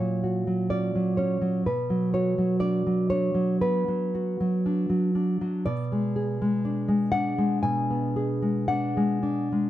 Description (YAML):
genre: romantic piece for solo classical guitar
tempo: 56-63 BPM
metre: 4/4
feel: rubato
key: unclear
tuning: A4 = 437 Hz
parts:
  - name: nylon-string guitar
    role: solo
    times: 0.0-9.7 s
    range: A#2 to G#5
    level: -23 LUFS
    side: equal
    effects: none
room: light reverb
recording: dark, warm production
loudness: -23 LUFS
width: side -13 dB against mid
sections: 0.0-9.7 A section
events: none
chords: 0.0 F#/A#; 1.6 Bm; 5.7 G#dim/B